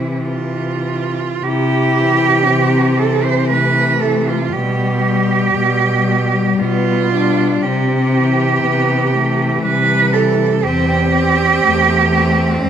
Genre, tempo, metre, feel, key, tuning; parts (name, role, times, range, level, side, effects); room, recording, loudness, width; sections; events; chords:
classical, lyrical piece for cello ensemble; 58 BPM; 3/4; uneven beats, rubato; C major; A4 = 440 Hz
clear cello; melody; 0.0-12.7 s; G3 to E4; -20 LUFS; left 6 dB
rich cello; second line; 0.0-12.7 s; C4 to C5; -16 LUFS; right 6 dB
rich cello; accompaniment; 0.0-12.7 s; E3 to C4; -22 LUFS; left 3 dB
rich cello; bass; 0.0-12.7 s; E2 to C3; -18 LUFS; right 1 dB
moderate concert hall reverb, RT60 1.9 s; -13 LUFS; side -9 dB against mid
0.0-1.4 A section; 1.4-12.7 A section
0.0 C; 4.5 G/B; 7.6 C; 10.6 C/E